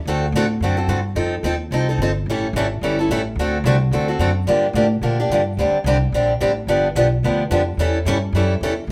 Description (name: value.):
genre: acoustic string swing (jazz manouche).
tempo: 218 BPM.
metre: 4/4.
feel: swing 56% on 8ths.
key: unclear.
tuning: A4 = 441 Hz.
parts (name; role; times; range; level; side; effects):
upright bass; bass; 0.0-8.9 s; G1 to Bb2; -23 LUFS; equal; none.
picked steel-string acoustic guitar; accompaniment; 0.1-8.7 s; D3 to A4; -22 LUFS; equal; none.
room: wet club reverb, RT60 0.7 s.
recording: heard from further back in the room.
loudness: -19 LUFS.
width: mono.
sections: 0.0-5.6 A section; 5.6-8.9 B section.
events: none.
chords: 0.1 D7; 1.2 F7; 2.3 A7; 3.4 D7; 4.5 Gm7; 5.6 D7sus4; 6.7 G7; 7.8 A7.